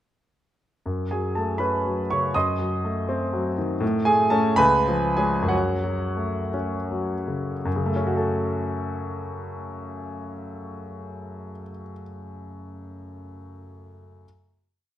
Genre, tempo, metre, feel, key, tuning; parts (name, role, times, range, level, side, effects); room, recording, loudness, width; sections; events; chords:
classical, romantic character piece for solo piano; 52-83 BPM (dotted quarters); 6/8; rubato; F# minor; A4 = 441 Hz
clear concert grand piano; solo; 0.9-14.3 s; C#2 to D#6; -23 LUFS; equal
wet recital hall reverb, RT60 1.8 s; -22 LUFS; side -12 dB against mid
0.8-7.7 A section; 7.7-12.1 final chord
slowing down 3.1-7.7
0.8 F#m; 2.3 F#dim7; 3.8 Amaj7; 4.6 C#7; 5.5 F#m